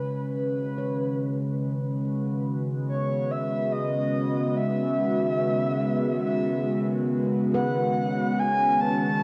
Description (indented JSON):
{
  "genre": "ambient",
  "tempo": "71 BPM",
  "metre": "3/4",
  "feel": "straight",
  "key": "C# minor",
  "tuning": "A4 = 437 Hz",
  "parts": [
    { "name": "breathy flute-like synth lead", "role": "melody", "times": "0.0-9.2 s", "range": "B4 to A5", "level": "-30 LUFS", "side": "equal", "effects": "lush chorus, cassette tape, tape echo" },
    { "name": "warbly tape-like pad", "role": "sustained chords", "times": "0.0-9.2 s", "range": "D#3 to B4", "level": "-30 LUFS", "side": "equal", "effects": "chorus, built-in reverb, phaser, cassette tape" },
    { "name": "analog drone", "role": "drone", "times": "0.0-9.2 s", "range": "C#3", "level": "-32 LUFS", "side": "equal", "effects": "chorus, cassette tape" },
    { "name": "handpan", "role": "arpeggios", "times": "0.8-2.6, 7.5-9.2 s", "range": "B4 to C#5", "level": "-37 LUFS", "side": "equal", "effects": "cassette tape, tape echo" }
  ],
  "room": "wet spring reverb, RT60 1.1 s",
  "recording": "home recording on cassette",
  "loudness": "-26 LUFS",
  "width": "mono",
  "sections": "0.0-9.2 A section",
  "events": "fade-in on ambient pad 0.0-9.2; fade-in on handpan 0.0-9.2; fade-in on soft synth lead 0.0-9.2; fade-out on synth drone 0.0-9.2",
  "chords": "0.0 C#m7",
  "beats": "0.35 1.20 | 2.04 2.89 3.73 | 4.58 5.42 6.27 | 7.11 7.96 8.80"
}